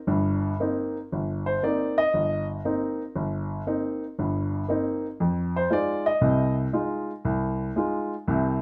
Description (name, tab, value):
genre	solo jazz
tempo	117 BPM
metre	4/4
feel	swing 69% on 8ths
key	C minor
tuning	A4 = 440 Hz
part	dark baby grand piano	solo	0.1-8.6 s	G1 to Eb5	-26 LUFS	equal	none
room	moderate studio reverb, RT60 0.9 s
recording	none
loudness	-26 LUFS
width	mono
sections	0.0-8.6 A section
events	grand piano solo 0.0-8.6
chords	0.0 Cm7; 5.2 Fm7